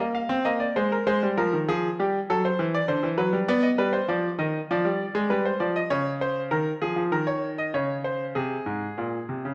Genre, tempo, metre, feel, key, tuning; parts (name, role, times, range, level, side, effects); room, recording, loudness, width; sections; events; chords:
classical, baroque-style two-part invention for grand piano; 99 BPM; 4/4; straight; Ab major from 5.9 s; A4 = 440 Hz
bright concert grand piano; solo; 0.0-9.5 s; Ab2 to F5; -26 LUFS; equal
moderate recital hall reverb, RT60 1.5 s; -26 LUFS; mono
0.0-9.5 A section
0.0 Eb5; 1.1 Ab; 2.3 D7; 3.5 G; 4.7 G7/F; 5.9 Bbm/Db; 7.1 Eb5; 8.4 Ab